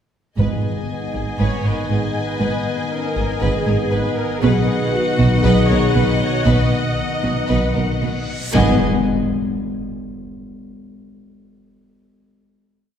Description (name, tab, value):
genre	cinematic, epic orchestral film score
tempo	118 BPM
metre	4/4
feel	straight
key	G# minor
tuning	A4 = 438 Hz
part	rich studio violin section	melody	0.4-8.8 s	F#5 to G#5	-29 LUFS	left 4 dB	none
part	rich symphonic violin section	second line	0.4-8.8 s	F#4 to D#5	-27 LUFS	left 2 dB	none
part	clear woodwind section	sustained chords	0.4-8.8 s	B3 to D#5	-29 LUFS	equal	none
part	mellow French horn section	sustained chords	0.4-8.8 s	B3 to B4	-28 LUFS	left 2 dB	none
part	warm trombone section	sustained chords	0.4-8.8 s	D#3 to B3	-27 LUFS	left 1 dB	none
part	rich symphonic cello section	bass	0.4-8.8 s	G#2 to B2	-22 LUFS	right 2 dB	none
part	rich symphonic double bass section	bass	0.4-8.8 s	G#1 to B1	-21 LUFS	equal	none
part	timpani	percussion	0.4-1.1, 8.6-8.8 s	G#2	-23 LUFS	left 2 dB	none
part	rich symphonic viola section	accompaniment	1.4-8.8 s	B3 to D#5	-26 LUFS	right 1 dB	none
part	reverse cymbal and impact	sound effects	8.2-10.7 s	none	-28 LUFS	left 1 dB	none
room	wet scoring stage reverb, RT60 1.8 s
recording	heard from further back in the room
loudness	-16 LUFS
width	side -8 dB against mid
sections	0.4-8.5 theme; 8.5-10.7 final chord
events	reverse cymbal 8.2-8.5; impact 8.5-10.7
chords	0.4 G#m; 4.4 B; 8.5 G#m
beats	| 0.39 0.90 1.40 1.90 | 2.41 2.91 3.42 3.92 | 4.43 4.93 5.44 5.95 | 6.46 6.98 7.50 8.02 | 8.54 9.07 9.60 10.13